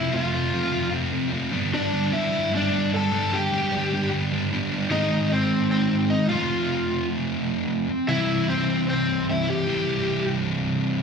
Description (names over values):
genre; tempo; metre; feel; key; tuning
punk; 151 BPM; 4/4; straight; C major; A4 = 440 Hz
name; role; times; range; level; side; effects
lead guitar through a small cranked amp; melody; 0.0-10.3 s; C4 to A5; -25 LUFS; left 1 dB; overdrive
sludgy distorted guitar; riff; 0.0-11.0 s; F2 to F4; -23 LUFS; equal; overdrive
room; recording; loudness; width
moderate club reverb, RT60 0.6 s; live gig heard through the venue's PA, club reverb; -21 LUFS; side -6 dB against mid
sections
0.0-4.9 A section; 4.9-11.0 B section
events
none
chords
0.0 F; 1.5 G; 4.9 Ab; 6.3 F; 8.1 C